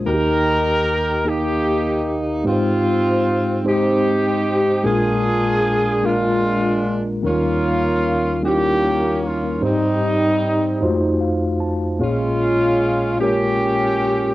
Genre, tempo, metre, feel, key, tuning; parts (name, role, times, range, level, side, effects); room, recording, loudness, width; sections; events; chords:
gospel; 50 BPM (dotted quarters); 6/8; straight; Ab major; A4 = 440 Hz
mellow tine electric piano; accompaniment; 0.0-14.3 s; Bb1 to A5; -20 LUFS; equal; medium stereo tremolo, cassette tape, plate reverb
warm horn section; melody; 0.1-14.3 s; G3 to Bb4; -19 LUFS; equal; cassette tape, plate reverb
wet booth ambience, RT60 0.2 s; home recording on cassette; -16 LUFS; side -16 dB against mid
0.0-14.3 A section
tine electric piano fill 10.8-12.0
0.1 Eb; 2.5 Abmaj7; 4.8 Bb7; 7.2 Eb7; 9.6 Abmaj7; 10.8 F7b9; 12.0 Bbm7